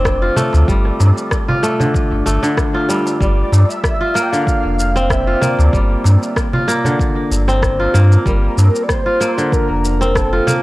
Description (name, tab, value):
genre	organic downtempo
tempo	95 BPM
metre	4/4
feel	swing 54% on 16ths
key	unclear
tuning	A4 = 440 Hz
part	kora	arpeggios	0.0-10.6 s	D3 to F4	-17 LUFS	equal	tape echo
part	warm sub bass	bass	0.0-10.4 s	F1 to G2	-13 LUFS	equal	sidechain pumping
part	wind-like tuned noise texture	texture	0.0-10.6 s	D5	-33 LUFS	right 1 dB	none
part	electronic kick drum	drums	0.1-10.3 s	none	-19 LUFS	equal	studio reverb
part	electronic rim click and shaker	drums	0.1-10.6 s	none	-24 LUFS	left 1 dB	studio reverb
part	darbuka	percussion	0.4-10.6 s	none	-24 LUFS	right 1 dB	none
part	breathy flute-like synth lead	melody	3.2-10.6 s	A4 to G5	-22 LUFS	equal	ensemble chorus, tape echo
room	digital ambience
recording	dry, gritty hardware recording, transformer saturation, cassette tape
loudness	-12 LUFS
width	side -19 dB against mid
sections	0.0-10.6 A section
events	none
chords	0.0 F; 3.2 C9sus4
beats	0.05 | 0.68 1.31 1.95 2.58 | 3.21 3.84 4.47 5.10 | 5.74 6.37 7.00 7.63 | 8.26 8.89 9.53 10.16